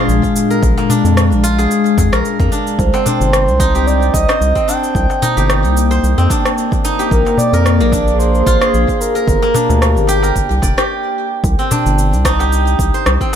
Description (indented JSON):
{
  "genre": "organic downtempo",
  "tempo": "111 BPM",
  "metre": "4/4",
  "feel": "swing 55% on 16ths",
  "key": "C minor",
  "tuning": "A4 = 440 Hz",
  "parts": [
    { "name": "warbly tape-like pad", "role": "sustained chords", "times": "0.0-10.9 s", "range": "Bb2 to Ab4", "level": "-19 LUFS", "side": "left 4 dB", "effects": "chorus, built-in reverb, phaser, sidechain pumping" },
    { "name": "steel-string zither", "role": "arpeggios", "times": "0.0-13.4 s", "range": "Bb3 to D5", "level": "-18 LUFS", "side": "right 1 dB", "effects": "digital delay" },
    { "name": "round analog bass", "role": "bass", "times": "0.1-13.2 s", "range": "F1 to F2", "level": "-14 LUFS", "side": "equal", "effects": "sidechain pumping" },
    { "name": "electronic shaker and rim click", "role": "drums", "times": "0.1-13.4 s", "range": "none", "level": "-21 LUFS", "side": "equal", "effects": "overdrive" },
    { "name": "electronic kick drum", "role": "drums", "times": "0.2-13.3 s", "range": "none", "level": "-18 LUFS", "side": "equal", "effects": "overdrive" },
    { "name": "darbuka", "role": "percussion", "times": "0.8-13.4 s", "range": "none", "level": "-23 LUFS", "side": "left 2 dB", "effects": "none" },
    { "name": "quartz singing bowl", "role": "texture", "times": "2.8-10.9 s", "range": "C5", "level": "-28 LUFS", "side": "right 8 dB", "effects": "none" },
    { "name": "breathy flute-like synth lead", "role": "melody", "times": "3.1-10.1 s", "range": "Bb4 to G5", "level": "-19 LUFS", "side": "right 2 dB", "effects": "chorus, ping-pong delay" }
  ],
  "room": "moderate echo chamber reverb, RT60 1.7 s",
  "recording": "none",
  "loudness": "-11 LUFS",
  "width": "side -9 dB against mid",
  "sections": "0.0-11.4 A section; 11.4-13.4 A section",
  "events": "break 10.9-11.4",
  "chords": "0.0 Bb7; 2.8 Cmadd9; 7.1 Bb7; 9.3 Gm; 11.4 Cmadd9"
}